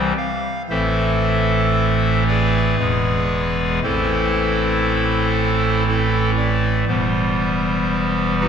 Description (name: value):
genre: classical, chorale-style piece for pipe organ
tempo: 58 BPM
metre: 3/4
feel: straight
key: A minor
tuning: A4 = 440 Hz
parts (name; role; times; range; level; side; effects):
- pipe organ, clarinet reed; solo; 0.0-8.5 s; E1 to F5; -16 LUFS; equal; none
room: wet church reverb, RT60 2.8 s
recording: none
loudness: -16 LUFS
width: side -7 dB against mid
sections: 0.7-8.5 A section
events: none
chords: 0.0 C; 0.7 Am; 2.8 E7; 3.8 Am; 6.9 Em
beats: | 0.70 1.75 2.79 | 3.83 4.86 5.87 | 6.88 7.89